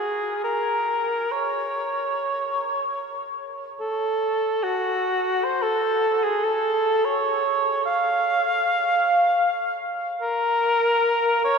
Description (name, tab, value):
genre	classical, free, expressive piece for unaccompanied cor anglais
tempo	69-78 BPM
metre	4/4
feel	rubato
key	Db major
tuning	A4 = 440 Hz
part	warm cor anglais	solo	0.0-11.6 s	Gb4 to F5	-21 LUFS	equal	none
room	wet cathedral reverb, RT60 6.1 s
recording	heard from further back in the room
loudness	-21 LUFS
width	side -5 dB against mid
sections	0.0-11.6 A section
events	none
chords	none